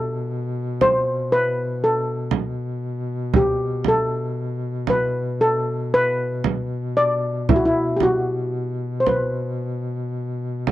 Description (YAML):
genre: caucasian folk, Caucasian lament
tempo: 58 BPM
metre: 4/4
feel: rubato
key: B phrygian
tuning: A4 = 440 Hz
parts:
  - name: steel pan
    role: melody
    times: 0.0-10.6 s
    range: E4 to D5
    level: -20 LUFS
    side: left 1 dB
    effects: none
  - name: warm duduk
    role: drone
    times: 0.0-10.7 s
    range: B2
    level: -26 LUFS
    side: left 1 dB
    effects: none
  - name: frame drum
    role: percussion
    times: 0.8-10.7 s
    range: none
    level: -21 LUFS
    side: right 5 dB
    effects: none
room: light reverb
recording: dry, close 1970s-style studio recording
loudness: -20 LUFS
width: side -14 dB against mid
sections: 0.0-10.7 A section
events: none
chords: none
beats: 0.31 1.32 2.33 | 3.35 4.38 5.41 6.45 | 7.50 8.55 9.61 10.69